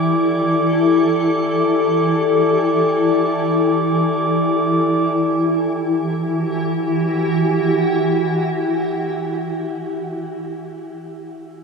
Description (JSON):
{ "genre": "ambient", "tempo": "free time", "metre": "none", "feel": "none", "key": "E minor", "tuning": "A4 = 439 Hz", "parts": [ { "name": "granular cloud pad", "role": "sustained chords", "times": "0.0-9.6 s", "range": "E3 to A4", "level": "-17 LUFS", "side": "left 1 dB", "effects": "built-in reverb, shimmer reverb" }, { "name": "glass harmonica", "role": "texture", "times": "0.0-5.1 s", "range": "D5 to D6", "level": "-23 LUFS", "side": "right 2 dB", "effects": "shimmer reverb" } ], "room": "wet huge ambient reverb, RT60 7.8 s", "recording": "dark, warm production", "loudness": "-16 LUFS", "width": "side -4 dB against mid", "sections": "0.0-5.1 A section; 5.1-8.9 B section", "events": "filter sweep on ambient pad 0.0-5.1", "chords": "0.0 G5/E; 5.1 Emadd9", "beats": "free time" }